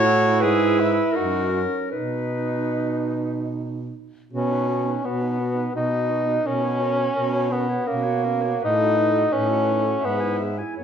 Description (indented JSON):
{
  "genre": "classical, lyrical piece for single-reed quartet",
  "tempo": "72-89 BPM",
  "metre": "3/4",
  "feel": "rubato",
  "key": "B major",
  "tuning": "A4 = 438 Hz",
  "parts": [
    { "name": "clear clarinet", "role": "melody", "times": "0.0-10.8 s", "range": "F#4 to G#5", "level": "-28 LUFS", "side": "left 5 dB", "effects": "none" },
    { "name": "mellow alto saxophone", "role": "second line", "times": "0.0-10.8 s", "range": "B3 to A#4", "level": "-29 LUFS", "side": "right 9 dB", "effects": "none" },
    { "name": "mellow tenor saxophone", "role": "accompaniment", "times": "0.0-10.8 s", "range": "A#3 to G#4", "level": "-23 LUFS", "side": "left 1 dB", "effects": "none" },
    { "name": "mellow baritone saxophone", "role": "bass", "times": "0.0-10.8 s", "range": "F#2 to B2", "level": "-26 LUFS", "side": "right 2 dB", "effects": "none" }
  ],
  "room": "wet recital hall reverb, RT60 1.4 s",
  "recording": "dark, warm production",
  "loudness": "-20 LUFS",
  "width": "side -8 dB against mid",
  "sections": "0.0-4.3 A section; 4.3-10.8 B section",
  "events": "none",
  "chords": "0.4 E/G#; 1.2 F#; 1.9 B; 6.5 F#/B; 8.6 B7/A; 10.0 E/G#"
}